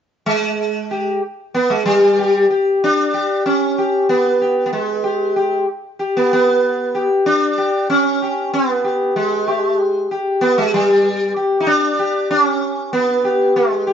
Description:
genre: indian classical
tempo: 95 BPM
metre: 7/4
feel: straight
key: unclear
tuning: A4 = 441 Hz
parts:
  - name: sitar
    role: solo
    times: 0.3-13.9 s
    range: G3 to G4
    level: -14 LUFS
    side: equal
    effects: none
room: light reverb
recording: band playing live in one room, nothing above 7.6 kHz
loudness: -15 LUFS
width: side -8 dB against mid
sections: 0.3-13.9 A section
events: none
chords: none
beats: | 0.27 0.90 1.54 2.18 2.82 3.45 4.09 | 4.73 5.36 6.00 6.63 7.26 7.89 8.53 | 9.16 9.79 10.42 11.05 11.67 12.30 12.93 | 13.55

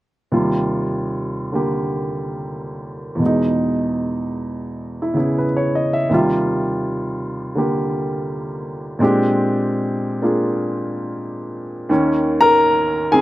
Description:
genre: solo jazz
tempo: 83 BPM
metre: 4/4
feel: swing 68% on 8ths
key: Eb major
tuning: A4 = 440 Hz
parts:
  - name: warm baby grand piano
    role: solo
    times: 0.3-13.2 s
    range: Eb2 to Bb5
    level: -17 LUFS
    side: equal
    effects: none
room: light reverb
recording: recorded outdoors, with no room sound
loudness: -17 LUFS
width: side -16 dB against mid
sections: 0.3-11.9 A section; 11.9-13.2 B section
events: none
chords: 0.3 Eb69; 3.2 Emaj7; 6.1 Eb69; 9.0 Bb13; 11.9 Eb7(no3)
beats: | 0.31 1.03 1.76 2.48 | 3.20 3.93 4.65 5.38 | 6.10 6.82 7.55 8.27 | 9.00 9.72 10.45 11.17 | 11.89 12.62

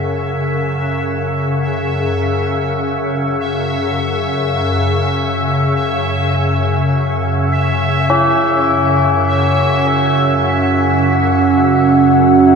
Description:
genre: dark ambient drone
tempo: free time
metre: none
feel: none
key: unclear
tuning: A4 = 440 Hz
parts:
  - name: organ-like drone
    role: drone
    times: 0.0-12.6 s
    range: F#2 to C#3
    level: -16 LUFS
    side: left 1 dB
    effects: ensemble chorus, built-in reverb
  - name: bubbling stepped-filter texture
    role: texture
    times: 0.0-12.6 s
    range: E5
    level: -20 LUFS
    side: right 1 dB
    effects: chorus, built-in reverb, shimmer reverb
  - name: dark analog pad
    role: sustained chords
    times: 8.1-12.6 s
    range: C#4 to F#5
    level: -14 LUFS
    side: right 4 dB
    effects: chorus, shimmer reverb
  - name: tubular bells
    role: arpeggios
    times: 8.1-12.6 s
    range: C#4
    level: -17 LUFS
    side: left 3 dB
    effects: ping-pong delay, shimmer reverb
room: wet cathedral reverb, RT60 6.0 s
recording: none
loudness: -13 LUFS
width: side -5 dB against mid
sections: 0.0-12.6 A section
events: fade-in on synth drone 0.0-12.6; fade-in on synth texture 0.0-12.6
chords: 0.0 F#5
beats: free time

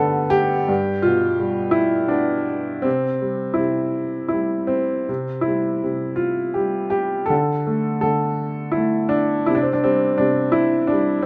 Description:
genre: classical, lyrical solo piano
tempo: 82 BPM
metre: 3/4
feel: rubato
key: unclear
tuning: A4 = 440 Hz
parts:
  - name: warm upright piano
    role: solo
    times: 0.0-11.3 s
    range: G2 to A4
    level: -21 LUFS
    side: equal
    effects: none
room: light reverb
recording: close, detailed microphones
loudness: -21 LUFS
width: mono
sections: 0.0-11.3 A section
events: none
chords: 0.0 G5; 0.7 G7; 2.9 C; 7.3 D5; 9.5 C5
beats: | 0.69 1.40 2.12 | 2.86 3.59 4.33 | 5.09 5.83 6.58 | 7.31 8.03 8.77 | 9.48 10.19 10.90

